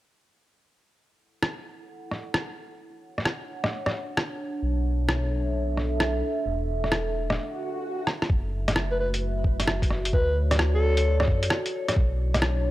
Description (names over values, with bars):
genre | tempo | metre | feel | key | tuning
future garage | 131 BPM | 4/4 | swing 66% on 16ths | F# minor | A4 = 440 Hz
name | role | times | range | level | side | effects
dark analog pad | sustained chords | 2.0-12.7 s | A3 to F#5 | -32 LUFS | right 1 dB | chorus, phaser, sidechain pumping
lo-fi sampler-style drum kit | drums | 1.4-12.5 s | hi-hat, rim click | -27 LUFS | equal | none
dark detuned saw bass | bass | 4.6-12.7 s | E1 to F#2 | -26 LUFS | equal | transformer saturation, sidechain pumping
swell | sound effects | 7.5-8.3 s | none | -34 LUFS | right 2 dB | none
electronic kick drum | drums | 8.3-12.1 s | none | -24 LUFS | equal | none
breathy alto saxophone | melody | 8.9-11.2 s | A4 to B4 | -30 LUFS | left 1 dB | analog delay
room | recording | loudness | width
light reverb, digital ambience | dry, gritty hardware recording | -24 LUFS | side -16 dB against mid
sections
1.0-8.3 A section; 8.3-12.7 B section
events
fade-in on analog synth pad 1.0-8.3; break 7.4-8.3; swell 7.5-8.3; drum fill 8.1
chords
1.0 F#m7; 2.8 Dmaj7; 4.6 Bm11; 6.5 E7sus4; 8.3 F#m7; 10.1 Dmaj7; 12.0 Bm11